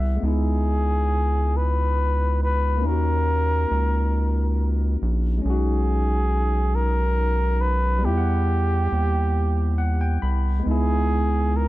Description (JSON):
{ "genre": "slow six-eight R&B", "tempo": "46 BPM (dotted quarters)", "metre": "6/8", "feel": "straight", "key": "unclear", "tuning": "A4 = 444 Hz", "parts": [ { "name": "barky tine electric piano", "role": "accompaniment", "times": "0.0-11.7 s", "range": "G3 to B5", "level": "-29 LUFS", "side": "left 1 dB", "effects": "lush chorus" }, { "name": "round analog bass", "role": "bass", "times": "0.0-11.7 s", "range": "A#1 to E2", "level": "-21 LUFS", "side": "equal", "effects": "none" }, { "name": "breathy flugelhorn", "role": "melody", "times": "0.3-11.7 s", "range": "G4 to B4", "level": "-26 LUFS", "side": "equal", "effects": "none" } ], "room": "small room ambience", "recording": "none", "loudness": "-20 LUFS", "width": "side -17 dB against mid", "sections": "0.0-11.7 A section", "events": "tine electric piano fill 0.0, 9.3-10.7", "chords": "0.2 C#m9; 2.8 D#m7; 5.4 B69; 8.0 Emadd9; 10.7 C#m9" }